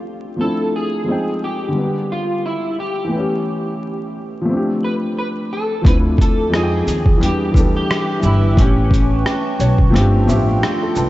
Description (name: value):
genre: lo-fi hip hop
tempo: 88 BPM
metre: 4/4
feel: swing 57% on 16ths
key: unclear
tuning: A4 = 440 Hz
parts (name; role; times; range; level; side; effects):
- dark upright piano; accompaniment; 0.0-11.1 s; D3 to A5; -20 LUFS; left 1 dB; low-pass filter
- electric guitar through a small old amp; melody; 0.4-9.9 s; C#4 to B4; -24 LUFS; equal; ensemble chorus, low-pass filter
- upright bass; bass; 5.8-11.1 s; G1 to F2; -17 LUFS; equal; none
- lo-fi sampler-style drum kit; drums; 5.8-11.1 s; hi-hat, kick drum, rim click, shaker; -16 LUFS; equal; none
- warbly tape-like pad; sustained chords; 6.1-11.1 s; C4 to D6; -26 LUFS; right 2 dB; chorus, built-in reverb, low-pass filter
room: moderate huge ambient reverb, RT60 4.7 s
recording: dreamy mix soaked in reverb, vinyl crackle, nothing above 7.9 kHz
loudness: -15 LUFS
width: side -16 dB against mid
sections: 0.0-5.8 A section; 5.8-11.1 B section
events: upright piano fill 9.3-11.1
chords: 0.4 Dm9; 1.1 Fm7; 1.8 G7/D; 3.1 A9; 4.5 G9sus4; 5.8 Dm9; 6.5 Fm7; 7.2 Em7; 8.6 A9; 9.9 G9sus4